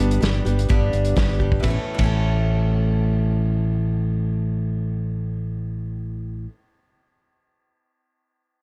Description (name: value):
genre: folk rock and heartland rock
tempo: 128 BPM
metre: 4/4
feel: straight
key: A major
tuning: A4 = 440 Hz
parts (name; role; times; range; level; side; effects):
- picked steel-string acoustic guitar; accompaniment; 0.0-6.6 s; G2 to A4; -30 LUFS; equal; none
- fingered electric bass; bass; 0.0-6.5 s; G1 to A1; -24 LUFS; equal; none
- vintage drum kit; drums; 0.0-2.1 s; hi-hat, kick drum, ride cymbal, snare drum; -26 LUFS; equal; none
room: small room ambience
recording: dark, warm production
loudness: -22 LUFS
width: mono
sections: 0.0-1.6 A section; 1.6-5.4 B section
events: drum fill 1.4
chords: 0.0 G; 1.6 A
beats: 0.21 0.69 1.16 | 1.63 2.10 2.57 3.04 | 3.51 3.98 4.45 4.92